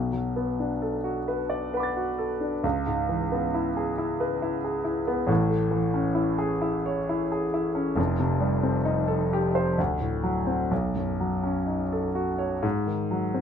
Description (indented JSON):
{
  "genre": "classical, impressionist solo piano",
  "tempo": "67 BPM",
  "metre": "3/4",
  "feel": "uneven beats, rubato",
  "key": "unclear",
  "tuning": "A4 = 440 Hz",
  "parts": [
    { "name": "warm grand piano", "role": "solo", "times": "0.0-13.4 s", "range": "F1 to A6", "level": "-24 LUFS", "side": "equal", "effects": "none" }
  ],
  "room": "light reverb",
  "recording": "close, detailed microphones",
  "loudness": "-24 LUFS",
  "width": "side -8 dB against mid",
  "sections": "0.0-13.4 A section",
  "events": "none",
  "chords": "0.0 Bm7; 2.6 C#m7; 5.3 Amaj7; 8.0 F9; 9.8 D7; 10.7 B9; 12.6 G#7(no3)"
}